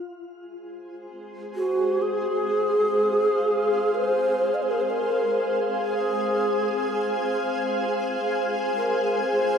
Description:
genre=ambient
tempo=62 BPM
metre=4/4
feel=straight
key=unclear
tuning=A4 = 440 Hz
part: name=granular cloud pad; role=sustained chords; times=1.2-9.6 s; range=Ab4 to Ab5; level=-25 LUFS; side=equal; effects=built-in reverb, shimmer reverb
part: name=breathy mellow long shakuhachi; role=melody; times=1.6-9.6 s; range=Gb4 to Eb5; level=-25 LUFS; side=equal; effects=shimmer reverb, diffuse ambient delay
room=wet cathedral reverb, RT60 6.5 s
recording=dark, warm production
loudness=-21 LUFS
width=side -7 dB against mid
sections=0.1-9.6 A section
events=none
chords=0.1 Fm

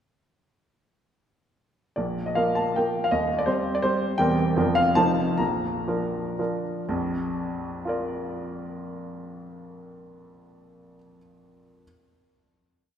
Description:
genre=classical, romantic triple-time dance for piano with dotted rhythms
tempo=116-178 BPM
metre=3/4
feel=rubato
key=Bb major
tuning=A4 = 440 Hz
part: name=clear baby grand piano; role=solo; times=2.0-11.8 s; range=Eb1 to Bb5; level=-23 LUFS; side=equal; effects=none
room=wet church reverb, RT60 3.1 s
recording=recorded in a church or concert hall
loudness=-23 LUFS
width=side -9 dB against mid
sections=2.0-6.9 A section; 6.9-9.7 final chord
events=slowing down 3.7-6.9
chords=2.0 Bb5; 3.1 Cm/Eb; 4.2 C7/E; 4.6 Bb/F; 5.0 F7; 5.4 Bb

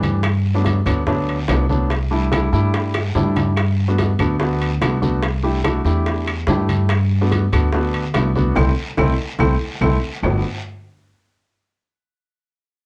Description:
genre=Afro-Cuban jazz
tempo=144 BPM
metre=4/4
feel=straight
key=G major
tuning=A4 = 440 Hz
part: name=warm grand piano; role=accompaniment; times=0.0-10.4 s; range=E3 to G4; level=-24 LUFS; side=equal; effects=none
part: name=upright bass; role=bass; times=0.0-10.4 s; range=G1 to G2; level=-21 LUFS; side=equal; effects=none
part: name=bongos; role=percussion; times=0.0-10.3 s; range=none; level=-30 LUFS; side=equal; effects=none
part: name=congas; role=percussion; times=0.0-10.3 s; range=none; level=-28 LUFS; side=equal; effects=none
part: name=guiro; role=percussion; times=0.0-10.3 s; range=none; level=-38 LUFS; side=equal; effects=none
part: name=timbales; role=percussion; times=0.0-10.3 s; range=none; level=-30 LUFS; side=equal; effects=none
part: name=claves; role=percussion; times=0.2-10.3 s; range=none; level=-34 LUFS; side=equal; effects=none
room=light reverb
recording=worn, warbling old tape, cassette tape, warbly pitch drift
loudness=-19 LUFS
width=mono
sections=0.0-10.2 A section; 10.2-11.9 B section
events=drum fill 2.9-3.6, 9.4-10.2; band accent 8.6-10.2; grand piano fill 9.4-10.2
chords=0.2 Gmaj7; 1.9 C6; 3.6 Gmaj7; 5.2 C6; 6.9 Gmaj7; 8.6 C6; 10.2 Gmaj7

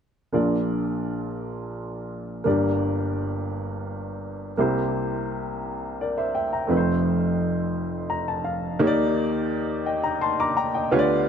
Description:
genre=gospel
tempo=57 BPM (dotted quarters)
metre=6/8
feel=straight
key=Bb major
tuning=A4 = 439 Hz
part: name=warm upright piano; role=solo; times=0.3-11.3 s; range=F1 to D6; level=-22 LUFS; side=equal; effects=analog delay
room=light reverb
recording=echo-heavy mix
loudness=-23 LUFS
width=side -7 dB against mid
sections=0.3-8.8 A section; 8.8-11.3 B section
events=upright piano fill 7.7-8.8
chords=0.3 Bb; 2.5 Gm; 4.6 C7; 6.7 F; 8.8 Ebmaj7

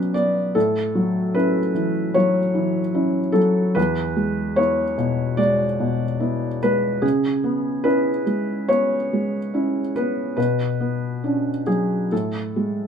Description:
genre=neoclassical minimalist piano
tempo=73 BPM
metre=4/4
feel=uneven beats, rubato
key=A major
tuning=A4 = 437 Hz
part: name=felt-muted upright piano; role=solo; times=0.0-12.9 s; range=E2 to D5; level=-19 LUFS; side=equal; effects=none
room=light reverb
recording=minimal, uncompressed stereo recording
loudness=-19 LUFS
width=side -7 dB against mid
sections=0.0-12.9 A section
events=none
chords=0.0 Bmadd9; 0.6 A6; 3.8 E7; 7.0 C#m7; 10.4 Bmadd9; 12.1 Amaj7(no3)

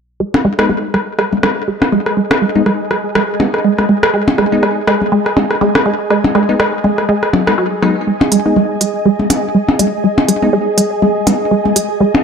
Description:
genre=minimal techno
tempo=122 BPM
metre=4/4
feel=swing 57% on 16ths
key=G# minor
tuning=A4 = 440 Hz
part: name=resonant blip pluck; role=riff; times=0.2-12.0 s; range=F#3 to G#3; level=-16 LUFS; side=right 2 dB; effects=chorus, phaser, ping-pong delay
part: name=ethereal airy pad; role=texture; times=1.1-12.2 s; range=G#4 to G#5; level=-19 LUFS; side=right 2 dB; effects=ensemble chorus, built-in reverb
part: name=minimal click drum kit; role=percussion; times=0.3-12.2 s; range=percussion blips, rim click, toms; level=-14 LUFS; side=left 1 dB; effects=digital delay
part: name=wavetable chord stab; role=stabs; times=0.6-11.3 s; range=G#3 to D#4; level=-19 LUFS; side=left 2 dB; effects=digital delay
part: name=electronic hi-hat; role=drums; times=8.3-11.9 s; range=none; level=-17 LUFS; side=right 3 dB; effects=none
room=moderate lush hall reverb, RT60 1.9 s, digital ambience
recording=dark, warm production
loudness=-11 LUFS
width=side -6 dB against mid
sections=0.2-8.1 A section; 8.1-12.2 B section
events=filter sweep on synth arpeggio sound 0.2-8.1, 8.1-12.2; filter sweep on synth stab 0.2-8.1, 8.1-12.2; build-up 8.1-12.2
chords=0.2 G#5

